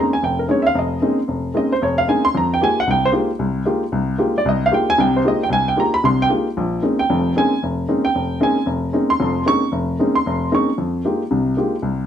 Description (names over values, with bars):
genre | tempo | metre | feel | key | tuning
jazz | 227 BPM | 4/4 | swing 60% on 8ths | F minor | A4 = 440 Hz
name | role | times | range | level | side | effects
warm baby grand piano | solo | 0.0-12.1 s | F1 to Db6 | -16 LUFS | equal | none
room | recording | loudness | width
moderate studio reverb, RT60 0.7 s | none | -16 LUFS | side -9 dB against mid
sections
0.0-10.8 A section; 10.8-12.1 B section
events
none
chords
0.0 Bbm11; 2.3 Fm11; 6.6 Bbm11; 10.8 Fm11